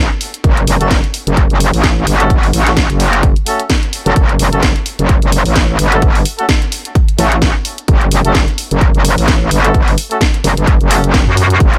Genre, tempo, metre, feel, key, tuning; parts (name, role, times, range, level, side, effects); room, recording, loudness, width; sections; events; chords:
bass house; 129 BPM; 4/4; swing 57% on 16ths; F# phrygian; A4 = 441 Hz
metallic wobble bass; bass; 0.0-11.8 s; F#1 to F#2; -14 LUFS; equal; chorus, sidechain pumping
garage drum kit; drums; 0.2-11.8 s; hi-hat, snare drum; -21 LUFS; equal
electronic kick drum; drums; 0.4-11.7 s; -15 LUFS; equal
mellow horn section; stabs; 0.8-11.0 s; A3 to A4; -22 LUFS; equal; sidechain pumping, delay
digital ambience; -12 LUFS; mono
0.0-11.8 A section
0.0 F#m